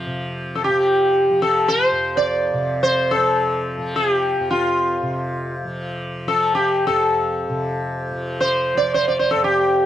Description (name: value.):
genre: indian classical, Hindustani.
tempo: free time.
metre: none.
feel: none.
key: F raga bhupali.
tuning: A4 = 440 Hz.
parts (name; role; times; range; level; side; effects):
tanpura; drone; 0.0-9.9 s; F2 to F3; -27 LUFS; equal; none.
sitar; melody; 0.6-9.9 s; F4 to D5; -17 LUFS; equal; none.
room: little or no reverb.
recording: worn, warbling old tape, cassette tape, warbly pitch drift.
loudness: -17 LUFS.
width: side -11 dB against mid.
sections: 0.1-9.9 A section.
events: none.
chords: none.